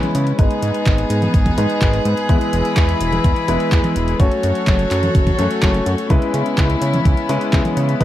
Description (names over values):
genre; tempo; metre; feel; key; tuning
italo disco; 126 BPM; 4/4; straight; C# minor; A4 = 440 Hz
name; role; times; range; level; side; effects
rich chamber string section; sustained chords; 0.0-8.0 s; E3 to C#5; -21 LUFS; left 1 dB; none
clear concert grand piano; stabs; 0.0-8.0 s; G#3 to C#5; -22 LUFS; left 2 dB; low-pass filter, tape echo
house drum kit; drums; 0.0-8.0 s; congas, handclaps, hi-hat; -25 LUFS; right 1 dB; none
fat analog bass; bass; 0.1-8.0 s; E1 to C#3; -20 LUFS; equal; none
electronic kick drum; drums; 0.4-8.0 s; none; -16 LUFS; equal; overdrive
room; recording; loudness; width
little or no reverb; dry, close 1970s-style studio recording, vinyl crackle; -14 LUFS; side -13 dB against mid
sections
0.0-8.0 A section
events
filter sweep on grand piano 0.0-8.0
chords
0.4 G#m; 2.3 E; 4.2 F#m; 6.1 C#m7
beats
| 0.39 0.86 1.34 1.82 | 2.29 2.77 3.24 3.72 | 4.20 4.67 5.15 5.62 | 6.10 6.58 7.05 7.53 | 8.01